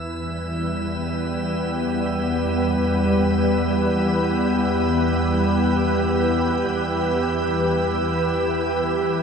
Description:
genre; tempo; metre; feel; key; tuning
ambient; free time; none; none; unclear; A4 = 442 Hz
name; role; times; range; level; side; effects
soft additive organ-like pad; sustained chords; 0.0-9.2 s; E3 to B4; -20 LUFS; equal; ensemble chorus, built-in reverb
warm chamber double bass section; bass; 0.0-8.8 s; E2; -27 LUFS; equal; none
drifting glass-harmonics texture; texture; 0.0-8.9 s; E6; -33 LUFS; right 2 dB; chorus, built-in reverb
room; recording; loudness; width
wet shimmer reverb, RT60 8.2 s; none; -19 LUFS; side -6 dB against mid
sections
0.0-8.9 A section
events
none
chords
0.0 Em

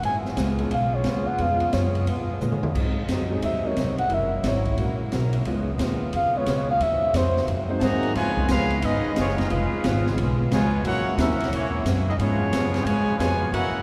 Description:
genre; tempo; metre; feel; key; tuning
jazz, big band swing; 178 BPM; 4/4; swing 64% on 8ths; Db mixolydian, Db major from 8.2 s; A4 = 440 Hz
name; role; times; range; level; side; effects
trumpet with bucket mute; melody; 0.0-7.5 s; C5 to Ab5; -30 LUFS; equal; none
picked steel-string acoustic guitar; accompaniment; 0.0-13.8 s; Gb2 to Bb4; -35 LUFS; equal; none
clear saxophone section; sustained chords; 0.0-13.8 s; C3 to Gb4; -37 LUFS; equal; none
upright bass; bass; 0.0-13.8 s; F1 to Bb2; -28 LUFS; equal; none
open jazz drum kit; drums; 0.0-13.6 s; crash cymbal, hi-hat, kick drum, ride cymbal, snare drum, toms; -32 LUFS; equal; none
warm grand piano; accompaniment; 0.6-8.1 s; F3 to C5; -36 LUFS; equal; none
brilliant trumpet section; melody; 7.8-13.8 s; Bb3 to Bb5; -30 LUFS; equal; none
bright trombone section; second line; 7.8-13.8 s; Cb3 to Gb4; -31 LUFS; equal; none
room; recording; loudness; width
wet cathedral reverb, RT60 6.8 s; recorded in a church or concert hall; -23 LUFS; mono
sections
0.0-8.2 A section; 8.2-13.8 B section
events
muted trumpet solo 0.0-8.2; drum fill 2.4-2.7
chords
0.0 Db7; 2.7 Ab7; 4.1 Gb7; 5.5 Db7; 6.8 Ab7; 8.2 Db7; 10.8 Gb7; 12.2 Db7

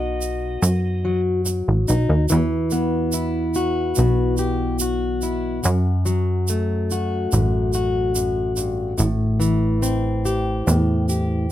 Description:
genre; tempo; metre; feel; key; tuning
acoustic folk duo or small band; 72 BPM; 4/4; straight; E minor; A4 = 436 Hz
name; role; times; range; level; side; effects
pedal steel guitar; second line; 0.0-1.2 s; D#5; -34 LUFS; right 4 dB; none
fingerpicked plugged-in steel-string acoustic guitar; accompaniment; 0.0-11.5 s; F#2 to G4; -22 LUFS; left 2 dB; none
plucky analog bass; bass; 0.0-11.5 s; A1 to F#2; -21 LUFS; right 1 dB; none
tube shaker; percussion; 0.2-11.3 s; none; -28 LUFS; right 6 dB; none
room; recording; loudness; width
little or no reverb; close, detailed microphones; -18 LUFS; side -12 dB against mid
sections
0.0-2.3 A section; 2.3-11.5 B section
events
pedal steel guitar solo 0.0-2.3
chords
0.0 B; 2.3 Emadd9; 5.6 F#m; 9.0 Am7

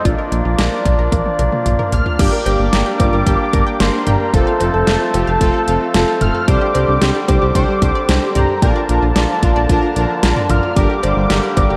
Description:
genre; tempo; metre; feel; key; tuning
synth-pop; 112 BPM; 4/4; straight; unclear; A4 = 439 Hz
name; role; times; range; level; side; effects
unison lead; melody; 0.0-11.8 s; D5 to F6; -24 LUFS; equal; analog chorus, tape echo
hand-pumped harmonium; sustained chords; 0.0-11.8 s; D3 to D4; -24 LUFS; equal; none
analog pluck; arpeggios; 0.1-11.8 s; F3 to G5; -27 LUFS; equal; chorus, tape echo
smooth gliding synth bass; bass; 0.1-11.8 s; F1 to C2; -20 LUFS; equal; none
pop drum kit; drums; 0.1-11.7 s; cowbell, crash cymbal, hi-hat, kick drum, snare drum, toms; -20 LUFS; equal; none
analog synth brass; accompaniment; 2.2-11.8 s; Bb3 to C5; -22 LUFS; equal; chorus
room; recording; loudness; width
wet lush hall reverb, RT60 2.6 s; dreamy mix soaked in reverb; -15 LUFS; mono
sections
0.0-2.2 A section; 2.2-11.8 B section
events
drum fill 1.1-2.2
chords
0.1 Bb; 2.2 Gm; 4.3 F; 6.5 Csus2; 8.6 Bb; 10.8 Gm

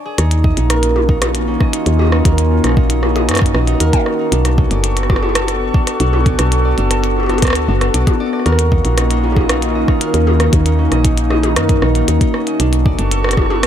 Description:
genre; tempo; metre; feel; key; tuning
IDM; 116 BPM; 4/4; straight; unclear; A4 = 445 Hz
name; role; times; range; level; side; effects
concert harp; arpeggios; 0.0-13.7 s; Db4 to Eb5; -20 LUFS; right 2 dB; analog delay
warbly tape-like pad; sustained chords; 0.6-13.7 s; Eb3 to C#6; -19 LUFS; left 2 dB; chorus, built-in reverb
woody FM bass; bass; 0.2-13.7 s; F#1 to Gb2; -15 LUFS; equal; none
glitchy drum kit; drums; 0.2-13.7 s; hi-hat, rim click, toms; -20 LUFS; equal; none
electronic kick drum; drums; 0.4-13.5 s; none; -14 LUFS; equal; none
room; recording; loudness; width
light reverb, digital ambience; none; -12 LUFS; side -10 dB against mid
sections
0.2-13.7 A section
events
break 0.0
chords
0.2 Ebm9; 4.3 Bm9; 8.5 Ebm9; 12.6 Bm9

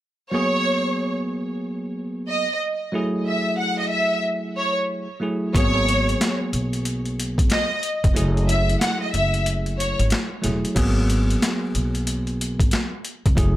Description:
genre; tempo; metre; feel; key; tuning
hip hop, boom-bap hip-hop; 92 BPM; 4/4; swing 62% on 16ths; unclear; A4 = 439 Hz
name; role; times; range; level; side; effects
warm studio violin section; melody; 0.3-10.0 s; C#5 to F#5; -24 LUFS; equal; plate reverb, tape echo
bell-like tine electric piano; accompaniment; 0.3-13.6 s; F#3 to G#4; -25 LUFS; right 1 dB; cassette tape, plate reverb
upright bass; bass; 5.5-13.6 s; E1 to B1; -23 LUFS; equal; none
boom bap sampler-style drum kit; drums; 5.5-13.6 s; crash cymbal, hi-hat, kick drum, snare drum; -23 LUFS; equal; overdrive
room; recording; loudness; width
light reverb; none; -20 LUFS; side -14 dB against mid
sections
0.3-10.8 A section; 10.8-13.6 B section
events
kick muted 8.2-10.8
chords
0.3 G#m9; 2.9 F#m9; 5.5 G#m9; 8.2 F#m9; 10.8 G#m9

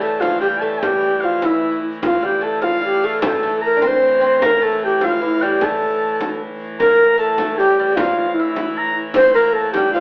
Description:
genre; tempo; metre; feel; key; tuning
medieval dance; 101 BPM (dotted quarters); 6/8; straight; A phrygian; A4 = 439 Hz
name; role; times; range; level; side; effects
mellow alto flute; melody; 0.0-10.0 s; E4 to C5; -16 LUFS; equal; none
clear shawm; second line; 0.0-10.0 s; E5 to C6; -22 LUFS; equal; none
lute; second line; 0.0-10.0 s; E3 to D4; -26 LUFS; equal; none
warm hurdy-gurdy; drone; 0.0-10.0 s; A2 to E3; -28 LUFS; equal; none
frame drum; percussion; 0.2-9.9 s; none; -25 LUFS; equal; none
room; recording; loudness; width
wet large studio reverb, RT60 0.9 s; band playing live in one room, AM radio sound; -14 LUFS; side -36 dB against mid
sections
0.0-6.8 A section; 6.8-10.0 A section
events
speeding up 0.0-10.0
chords
none

